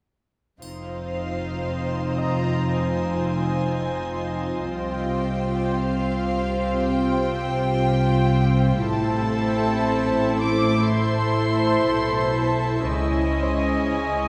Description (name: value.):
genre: cinematic, suspense film score.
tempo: 58 BPM.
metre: 4/4.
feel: straight.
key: unclear.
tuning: A4 = 440 Hz.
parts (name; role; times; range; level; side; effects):
warm chamber violin section; melody; 0.6-14.3 s; F5 to D6; -33 LUFS; equal; none.
warm chamber violin section; second line; 0.6-14.3 s; Fb4 to Eb5; -31 LUFS; equal; none.
rich symphonic viola section; accompaniment; 0.6-14.3 s; C4 to Eb5; -29 LUFS; equal; none.
soft additive organ-like pad; sustained chords; 0.8-14.3 s; Db4 to F5; -34 LUFS; equal; ensemble chorus, built-in reverb.
dark chamber double bass section; bass; 0.6-14.3 s; F1 to Db2; -28 LUFS; equal; none.
warm chamber cello section; bass; 0.6-14.3 s; F2 to Db3; -31 LUFS; equal; none.
triangle; percussion; 0.6-2.6 s; none; -51 LUFS; equal; none.
clear baby grand piano; texture; 2.2-14.3 s; C5 to Eb6; -38 LUFS; equal; none.
room: wet scoring stage reverb, RT60 1.9 s.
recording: heard from further back in the room.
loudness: -23 LUFS.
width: mono.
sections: 0.6-14.3 A section.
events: none.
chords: 0.6 Fm7; 4.7 Csus4; 8.9 Am; 12.9 Dbmadd9.